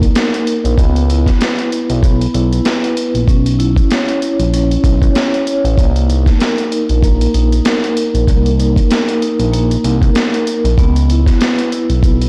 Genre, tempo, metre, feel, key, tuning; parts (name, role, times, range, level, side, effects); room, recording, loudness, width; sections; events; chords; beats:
hip hop, boom-bap hip-hop; 96 BPM; 4/4; swing 57% on 16ths; A4 = 440 Hz
vibraphone with soft mallets; accompaniment; 0.0-12.3 s; Bb3 to C#5; -19 LUFS; equal; cassette tape, high-pass filter, low-pass filter
smooth gliding synth bass; bass; 0.0-12.3 s; A1 to Db2; -16 LUFS; equal; transformer saturation
boom bap sampler-style drum kit; drums; 0.0-12.3 s; hi-hat, kick drum, snare drum; -17 LUFS; equal
little or no reverb; blown-out, overdriven recording, vinyl crackle, overdrive; -14 LUFS; mono
0.0-12.3 A section
0.0 Cm7; 0.8 Dbm7; 3.3 Bsus4; 5.8 Cm7; 10.8 Dbm7
0.15 | 0.78 1.40 2.03 2.65 | 3.28 3.90 4.53 5.15 | 5.78 6.40 7.03 7.65 | 8.28 8.90 9.53 10.15 | 10.78 11.40 12.03